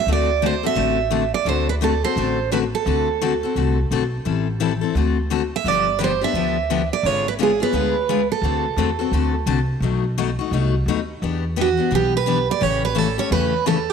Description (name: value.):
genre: acoustic string swing (jazz manouche).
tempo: 172 BPM.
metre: 4/4.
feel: swing 62% on 8ths.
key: D mixolydian.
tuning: A4 = 440 Hz.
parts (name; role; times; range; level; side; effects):
picked steel-string acoustic guitar; melody; 0.0-9.3, 11.6-13.9 s; F#4 to E5; -21 LUFS; right 9 dB; none.
picked steel-string acoustic guitar; accompaniment; 0.1-13.8 s; B2 to A4; -22 LUFS; left 11 dB; none.
upright bass; bass; 0.1-13.9 s; G1 to E2; -24 LUFS; equal; none.
room: light reverb, small room ambience.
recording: 1960s-style stereo with parts hard left and right.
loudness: -18 LUFS.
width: side -6 dB against mid.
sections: 0.1-13.9 A section.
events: none.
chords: 0.1 D7; 4.3 Am7; 5.0 D7; 5.6 G7; 7.0 G#dim7; 8.4 D7; 9.8 B7b9; 11.2 Em7; 12.6 A7.